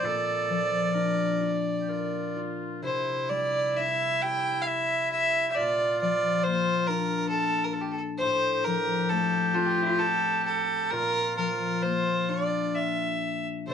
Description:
celtic folk, Celtic slow air; 61-69 BPM; 3/4; rubato; A4 = 441 Hz
rich fiddle; melody; 0.0-13.7 s; E4 to G5; -26 LUFS; right 1 dB
warm oboe; second line; 0.0-13.7 s; E4 to Bb4; -32 LUFS; left 1 dB
concert harp; accompaniment; 0.0-13.7 s; A2 to Bb4; -31 LUFS; left 5 dB
moderate studio reverb, RT60 0.6 s; band playing live in one room, nothing above 10.3 kHz; -24 LUFS; side -7 dB against mid
0.0-2.8 A section; 2.8-13.7 B section
0.0 Bb; 2.8 C; 5.6 Bb; 8.2 F/A; 10.9 Bb

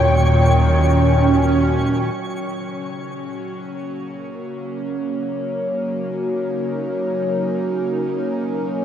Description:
ambient; free time; F# major; A4 = 441 Hz
airy breathy pad; sustained chords; 0.0-8.8 s; A#2 to G5; -21 LUFS; right 1 dB; chorus
round analog bass; bass; 0.0-2.1 s; D#2; -19 LUFS; equal
overtone-sweeping drone; drone; 0.0-8.8 s; F#3 to C#4; -23 LUFS; equal; chorus, built-in reverb, phaser
twinkling granular texture; texture; 0.0-2.2 s; C#5 to C#6; -30 LUFS; equal; built-in reverb
wet huge ambient reverb, RT60 7.7 s; -17 LUFS; side -9 dB against mid
0.0-2.2 A section; 2.2-8.8 B section
fade-in on analog synth pad 2.2-8.8
0.0 D#7; 2.2 F#; 5.3 D#m7; 8.3 Bmaj7

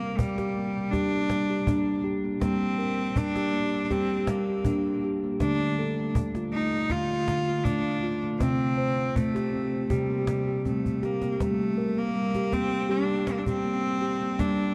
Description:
world meditative, meditative tuned percussion; 80 BPM; 4/4; straight; G minor; A4 = 440 Hz
clear cello; melody; 0.0-14.7 s; G3 to F4; -32 LUFS; equal; diffuse ambient delay
steel tongue drum; arpeggios; 0.0-14.7 s; C3 to C5; -30 LUFS; equal; diffuse ambient delay
cajon; percussion; 0.2-14.6 s; -36 LUFS; equal
wet cathedral reverb, RT60 7.0 s; dark, warm production; -27 LUFS; mono
0.0-11.4 A section; 11.4-14.7 B section
drum fill 10.7-11.4
0.0 Gm; 5.4 Dm; 8.4 C5; 11.4 Gm

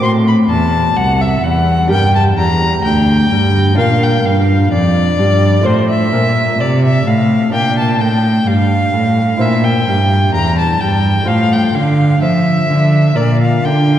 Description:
classical, baroque-style sonata movement with continuo; 64 BPM; 4/4; straight; F major from 3.8 s; A4 = 441 Hz
rich violin; melody; 0.0-14.0 s; C5 to C6; -16 LUFS; left 2 dB
lute; accompaniment; 0.0-14.0 s; D2 to D5; -19 LUFS; right 1 dB
rich cello; bass; 0.0-14.0 s; C2 to F3; -12 LUFS; equal
wet church reverb, RT60 3.6 s; dark, warm production; -10 LUFS; side -11 dB against mid
0.0-14.0 A section
0.0 F#dim; 1.9 Gm; 3.8 Bb; 5.7 F/A; 7.5 Gm7; 9.4 C7; 11.3 F/A; 13.2 Gm7/Bb

